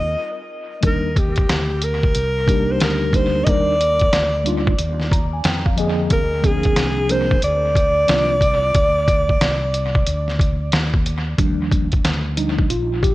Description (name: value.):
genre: hip hop, jazz-hop.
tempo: 91 BPM.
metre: 4/4.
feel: swing 63% on 16ths.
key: Eb major.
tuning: A4 = 439 Hz.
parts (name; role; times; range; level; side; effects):
breathy alto saxophone; melody; 0.0-10.7 s; G4 to Eb5; -20 LUFS; equal; dub echo.
mellow fretless electric bass; bass; 0.0-13.1 s; Bb1 to F2; -23 LUFS; equal; none.
mellow tine electric piano; accompaniment; 0.8-13.1 s; D3 to Bb5; -24 LUFS; equal; medium stereo tremolo, dub echo.
trip hop sampler-style drum kit; drums; 0.8-13.1 s; hi-hat, kick drum, snare drum; -19 LUFS; equal; dub echo.
room: little or no reverb.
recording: echo-heavy mix.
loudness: -16 LUFS.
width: side -17 dB against mid.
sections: 0.8-11.4 A section; 11.4-13.1 B section.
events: break 0.2-0.8; tine electric piano fill 4.8-6.1; tine electric piano solo 11.4-13.1.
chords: 0.0 N.C.; 0.8 Ebmaj7; 5.5 F5; 6.1 Bb9; 10.7 N.C.; 11.4 Ebmaj7.